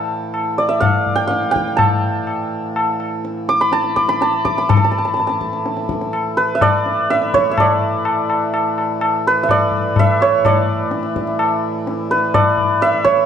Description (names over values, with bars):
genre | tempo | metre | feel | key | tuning
indian classical, Hindustani | 125 BPM | 3/4 | straight | unclear | A4 = 444 Hz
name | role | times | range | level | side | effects
santur | melody | 0.0-13.3 s | B4 to D6 | -17 LUFS | right 2 dB | none
pedal harmonium | drone | 0.0-13.3 s | A2 to E3 | -25 LUFS | equal | none
tabla | percussion | 0.3-13.3 s | none | -20 LUFS | left 4 dB | none
room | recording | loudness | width
moderate recital hall reverb, RT60 1.4 s | dark, warm production | -14 LUFS | side -8 dB against mid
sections
0.0-4.7 A section; 4.7-13.3 B section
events
speeding up 0.0-13.3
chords
none